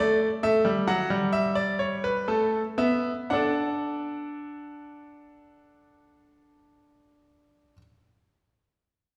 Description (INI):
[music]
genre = classical, baroque-style two-part invention for grand piano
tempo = 57-70 BPM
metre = 3/4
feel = straight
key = D major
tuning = A4 = 440 Hz
[part]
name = bright baby grand piano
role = solo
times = 0.0-7.8 s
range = F#3 to F#5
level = -26 LUFS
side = equal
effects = none
[sound]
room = wet recital hall reverb, RT60 1.5 s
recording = heard from further back in the room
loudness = -26 LUFS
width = mono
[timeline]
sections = 0.0-3.3 A section; 3.3-6.5 B section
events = slowing down 0.0-3.3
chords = 0.4 A7sus4 (rootless); 2.3 A5; 3.3 D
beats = | 0.43 1.34 2.29 | 3.31 4.36 5.41